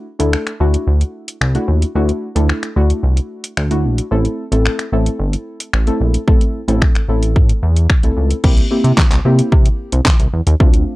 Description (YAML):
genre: dance-pop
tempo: 111 BPM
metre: 4/4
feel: straight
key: unclear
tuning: A4 = 440 Hz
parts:
  - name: deep mellow chord stab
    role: accompaniment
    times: 0.0-11.0 s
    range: A3 to A4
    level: -20 LUFS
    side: left 1 dB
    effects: chorus, sidechain pumping
  - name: chorused synth bass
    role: bass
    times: 0.2-10.8 s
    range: G1 to C3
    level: -14 LUFS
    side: equal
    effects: sidechain pumping
  - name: pop drum kit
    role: drums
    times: 0.2-10.9 s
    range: crash cymbal, finger snaps, handclaps, hi-hat, kick drum, snare drum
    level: -14 LUFS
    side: equal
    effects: none
room: little or no reverb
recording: dry, gritty hardware recording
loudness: -13 LUFS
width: side -19 dB against mid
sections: 0.0-8.4 A section; 8.4-11.0 B section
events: none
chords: 0.0 Dadd9; 4.1 Am; 8.4 C7